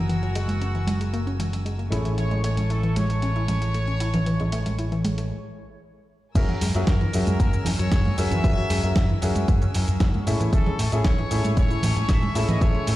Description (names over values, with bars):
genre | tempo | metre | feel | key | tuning
nu-disco, nu disco | 115 BPM | 4/4 | straight | unclear | A4 = 442 Hz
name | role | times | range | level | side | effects
mellow trumpet section | melody | 0.0-13.0 s | F#4 to E5 | -33 LUFS | equal | analog delay
warm baby grand piano | accompaniment | 0.0-13.0 s | A3 to E5 | -32 LUFS | left 2 dB | none
rich chamber violin section | sustained chords | 0.0-13.0 s | A3 to E6 | -36 LUFS | left 2 dB | sidechain pumping
picked electric bass with an envelope filter | bass | 0.0-13.0 s | F#1 to A2 | -24 LUFS | equal | none
analog pluck | arpeggios | 0.1-12.9 s | E3 to E4 | -31 LUFS | left 2 dB | chorus, vintage 12-bit sampler grit, sidechain pumping, analog delay
dusty soul sampler-style drum kit | drums | 0.1-13.0 s | crash cymbal, hi-hat, shaker, snare drum | -31 LUFS | right 1 dB | none
congas | percussion | 0.5-12.6 s | none | -30 LUFS | right 2 dB | none
electronic kick drum | drums | 6.4-12.7 s | none | -21 LUFS | equal | none
room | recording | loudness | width
light reverb, studio reverb | played on a big sound system in a bare room, large studio reverb | -20 LUFS | side -16 dB against mid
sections
0.0-6.4 A section; 6.4-13.0 B section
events
filter sweep on violin section 0.0-6.4; filter sweep on synth arpeggio sound 0.0-6.4; break 5.3-6.4; drop 6.4-13.0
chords
0.0 F#9; 1.9 Amaj7; 6.4 F#9; 10.3 Amaj7